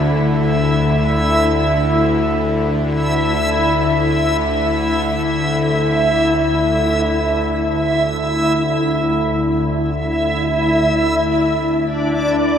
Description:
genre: dark ambient drone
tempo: free time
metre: none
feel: none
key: unclear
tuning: A4 = 439 Hz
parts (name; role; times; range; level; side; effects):
- bowed-like drone; drone; 0.0-12.6 s; D2 to D3; -18 LUFS; equal; built-in reverb
- backwards swelling texture; texture; 0.0-12.6 s; D4 to E5; -17 LUFS; left 1 dB; built-in reverb
room: wet cathedral reverb, RT60 4.9 s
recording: in a vast, echoing space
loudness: -14 LUFS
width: side -8 dB against mid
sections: 0.0-10.9 A section; 10.9-12.6 B section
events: none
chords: 0.0 Dsus2; 10.9 N.C.

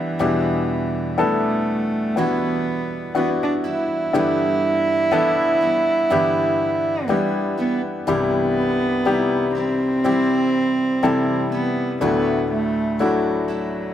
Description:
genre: pop ballad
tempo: 61 BPM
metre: 4/4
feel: straight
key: G major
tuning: A4 = 440 Hz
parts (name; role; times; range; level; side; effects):
- warm cello; melody; 0.0-13.9 s; E3 to E4; -21 LUFS; right 2 dB; plate reverb, ping-pong delay
- clear baby grand piano; accompaniment; 0.0-13.9 s; C2 to A4; -21 LUFS; left 3 dB; plate reverb
- picked steel-string acoustic guitar; arpeggios; 0.0-13.9 s; E2 to E4; -29 LUFS; right 5 dB; plate reverb
room: moderate studio reverb, RT60 0.8 s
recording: none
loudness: -18 LUFS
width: side -10 dB against mid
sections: 0.0-13.9 A section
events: none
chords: 0.2 Em7; 4.1 G6; 8.1 C; 12.0 Dadd9

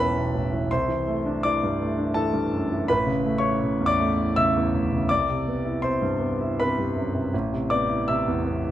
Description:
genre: classical, impressionist solo piano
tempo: 81 BPM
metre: 3/4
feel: rubato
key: unclear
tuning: A4 = 439 Hz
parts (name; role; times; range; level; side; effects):
- clear concert grand piano; solo; 0.0-8.7 s; E1 to E6; -22 LUFS; equal; none
room: light reverb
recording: close, detailed microphones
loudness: -22 LUFS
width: side -12 dB against mid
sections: 0.0-8.7 A section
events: none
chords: 0.0 Em6; 0.7 C69; 2.9 Aadd9; 5.1 Cmaj9; 7.3 Amadd9

